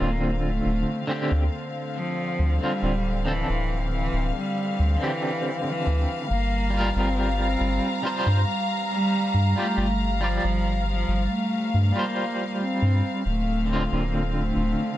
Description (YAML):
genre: trip hop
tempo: 69 BPM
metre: 4/4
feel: straight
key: D minor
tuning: A4 = 440 Hz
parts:
  - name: dark cello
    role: melody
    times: 0.0-15.0 s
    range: E3 to C4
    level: -29 LUFS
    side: equal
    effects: vintage 12-bit sampler grit, dub echo
  - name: electric guitar at the edge of break-up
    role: accompaniment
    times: 0.0-15.0 s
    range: D3 to D5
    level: -29 LUFS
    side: equal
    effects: tremolo, tape echo
  - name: dark studio string section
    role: sustained chords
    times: 0.0-15.0 s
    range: D3 to Bb5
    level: -29 LUFS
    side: left 1 dB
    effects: vintage 12-bit sampler grit
  - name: soft dub sub bass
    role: bass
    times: 0.0-14.8 s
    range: D1 to G2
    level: -24 LUFS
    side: equal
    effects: none
room: small room ambience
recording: dark, warm production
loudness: -22 LUFS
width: side -14 dB against mid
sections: 0.0-15.0 A section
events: none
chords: 0.0 Dm7; 6.3 Gm7; 13.3 Dm7